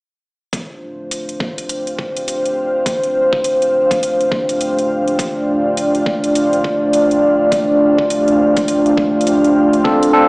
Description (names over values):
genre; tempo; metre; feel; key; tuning
glitch hop; 103 BPM; 4/4; swing 60% on 16ths; D minor; A4 = 440 Hz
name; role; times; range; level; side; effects
dark analog pad; sustained chords; 0.5-10.3 s; A3 to D5; -14 LUFS; equal; chorus, sidechain pumping
electronic hi-hat; drums; 0.5-10.1 s; none; -27 LUFS; equal; none
electronic kick drum; drums; 0.5-10.0 s; none; -22 LUFS; equal; high-pass filter on kick, high-pass filter on room
granular cloud pad; texture; 1.6-10.3 s; D4 to F5; -24 LUFS; equal; built-in reverb, sidechain pumping
tine electric piano; stabs; 9.8-10.3 s; C4 to A4; -10 LUFS; equal; slow stereo tremolo, sidechain pumping
room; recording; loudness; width
light reverb, digital ambience; played on a big sound system in a bare room, stone room reverb, small speaker sound; -13 LUFS; side -30 dB against mid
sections
0.5-10.3 A section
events
fade-in on ambient pad 0.5-10.3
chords
0.5 Dm7